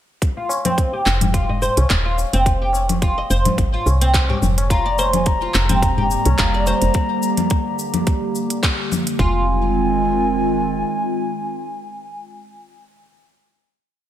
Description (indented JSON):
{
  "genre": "organic downtempo",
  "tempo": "107 BPM",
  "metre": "4/4",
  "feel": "swing 54% on 16ths",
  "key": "F dorian",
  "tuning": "A4 = 440 Hz",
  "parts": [
    { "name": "electronic kick drum", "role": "drums", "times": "0.2-9.3 s", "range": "none", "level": "-20 LUFS", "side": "equal", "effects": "overdrive" },
    { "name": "organic electronic drum kit", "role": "drums", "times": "0.2-9.2 s", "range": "congas, handclaps, hi-hat, shaker", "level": "-23 LUFS", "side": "left 1 dB", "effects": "overdrive" },
    { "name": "oud", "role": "arpeggios", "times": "0.4-9.5 s", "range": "C4 to Eb5", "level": "-22 LUFS", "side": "right 1 dB", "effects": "low-pass filter, digital delay" },
    { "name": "tabla", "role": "percussion", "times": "0.5-6.8 s", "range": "none", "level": "-26 LUFS", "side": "left 3 dB", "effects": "none" },
    { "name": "woody FM bass", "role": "bass", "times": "1.1-10.8 s", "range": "Eb1 to C2", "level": "-20 LUFS", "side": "equal", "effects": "none" },
    { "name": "mellow bansuri", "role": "melody", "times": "4.7-12.2 s", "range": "Ab5 to Bb5", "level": "-24 LUFS", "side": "left 2 dB", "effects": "digital delay" },
    { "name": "warbly tape-like pad", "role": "sustained chords", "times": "4.7-12.2 s", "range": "D3 to G4", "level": "-22 LUFS", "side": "right 1 dB", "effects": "chorus, built-in reverb, vintage 12-bit sampler grit, sidechain pumping" }
  ],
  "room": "light reverb",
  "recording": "none",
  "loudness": "-16 LUFS",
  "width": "side -11 dB against mid",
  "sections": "0.2-9.2 groove; 9.2-11.4 final chord",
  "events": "filter sweep on oud 0.2-7.0; band accent 8.6",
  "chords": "0.2 F7(no3); 4.7 Gm/F; 9.2 Fm7"
}